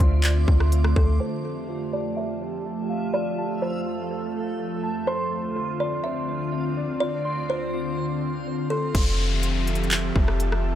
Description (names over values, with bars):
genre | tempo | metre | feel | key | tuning
hip hop, atmospheric cloud-rap | 124 BPM | 4/4 | half-time | F major | A4 = 441 Hz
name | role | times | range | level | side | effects
kalimba | melody | 0.0-8.9 s | A4 to E5 | -31 LUFS | left 1 dB | low-pass filter, tape echo
ethereal airy pad | sustained chords | 0.0-10.8 s | D2 to E5 | -28 LUFS | right 1 dB | ensemble chorus, built-in reverb, sidechain pumping, low-pass filter
muted felt-like synth keys | arpeggios | 0.0-8.9 s | F4 to C6 | -33 LUFS | equal | chorus, low-pass filter, tape echo
soft 808-style bass | bass | 0.0-1.2, 8.9-10.8 s | F1 to D2 | -21 LUFS | equal | none
trap drum kit | drums | 0.0-1.1, 8.9-10.6 s | crash cymbal, handclaps, hi-hat, kick drum, rim click | -23 LUFS | equal | none
backwards swelling texture | texture | 0.0-10.8 s | A3 to A5 | -36 LUFS | right 2 dB | built-in reverb
downlifter | sound effects | 8.9-10.8 s | none | -31 LUFS | left 3 dB | none
room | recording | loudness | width
digital ambience | none | -22 LUFS | side -11 dB against mid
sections
0.0-1.2 A section; 1.2-8.9 B section; 8.9-10.8 C section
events
filter sweep 1.2-8.9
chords
0.0 Dm7; 1.2 Fmaj7; 5.1 Dm7; 8.9 Fmaj7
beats
0.24 0.72 | 1.21 1.69 2.17 2.66 | 3.14 3.62 4.11 4.59 | 5.08 5.56 6.04 6.53 | 7.01 7.50 7.98 8.46 | 8.95 9.43 9.91 10.40